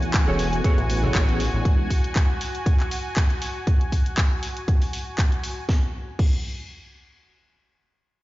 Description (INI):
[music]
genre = nu-disco, nu disco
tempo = 119 BPM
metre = 4/4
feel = swing 54% on 16ths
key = unclear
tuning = A4 = 440 Hz
[part]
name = mellow synth brass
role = accompaniment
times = 0.0-1.9 s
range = E3 to G#5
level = -30 LUFS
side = left 1 dB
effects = chorus, sidechain pumping, tape echo
[part]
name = lush unison pad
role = sustained chords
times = 0.0-5.7 s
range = F#4 to G#5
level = -32 LUFS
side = equal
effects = chorus, sidechain pumping
[part]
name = house drum kit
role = drums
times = 0.0-6.4 s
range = crash cymbal, handclaps, hi-hat, snare drum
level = -31 LUFS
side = equal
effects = none
[part]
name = electronic kick drum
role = drums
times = 0.1-6.3 s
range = none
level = -20 LUFS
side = equal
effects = none
[part]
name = mellow electric guitar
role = riff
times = 0.3-1.4 s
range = G#4 to C#5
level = -32 LUFS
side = right 4 dB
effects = wide subtle chorus, tape echo
[part]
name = fat analog bass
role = bass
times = 0.3-1.6 s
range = E1 to A1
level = -24 LUFS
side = equal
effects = none
[part]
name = congas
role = percussion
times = 1.0-1.1 s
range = none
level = -32 LUFS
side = left 1 dB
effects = none
[sound]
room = little or no reverb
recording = played on a big sound system in a bare room, stone room reverb, nothing above 7.5 kHz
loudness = -20 LUFS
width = side -18 dB against mid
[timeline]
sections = 0.0-5.7 A section; 5.7-8.2 B section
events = none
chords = 0.0 Amaj7; 1.7 E7; 3.7 F#sus2; 5.7 N.C.